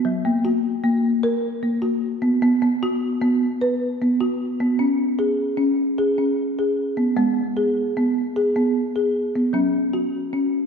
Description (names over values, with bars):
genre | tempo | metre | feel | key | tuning
world meditative, meditative tuned percussion | 50 BPM (dotted quarters) | 6/8 | straight | unclear | A4 = 440 Hz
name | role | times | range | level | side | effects
folk marimba with soft mallets | solo | 0.0-10.7 s | F#3 to B4 | -19 LUFS | equal | none
room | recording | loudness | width
wet concert hall reverb, RT60 1.9 s | dark, warm production | -19 LUFS | side -6 dB against mid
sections
0.0-4.8 A section; 4.8-10.7 B section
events
none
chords
0.0 F#; 2.4 B5; 4.8 C#5; 7.2 G#m; 9.5 F#5